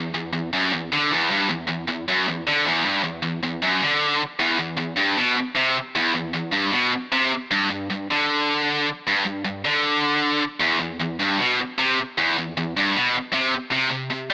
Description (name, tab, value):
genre	metal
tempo	154 BPM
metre	4/4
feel	straight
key	E minor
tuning	A4 = 440 Hz
part	scooped high-gain guitar	solo	0.0-14.3 s	E2 to G3	-19 LUFS	equal	distortion
room	light reverb, digital ambience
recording	small speaker sound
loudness	-19 LUFS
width	side -21 dB against mid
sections	0.0-4.2 A section; 4.2-14.3 B section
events	none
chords	none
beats	0.34 0.73 | 1.12 1.50 1.89 2.28 | 2.67 3.05 3.44 3.83 | 4.22 4.61 4.99 5.38 | 5.77 6.16 6.55 6.94 | 7.33 7.71 8.10 8.49 | 8.88 9.27 9.66 10.05 | 10.44 10.82 11.21 11.60 | 11.99 12.38 12.77 13.16 | 13.54 13.93 14.32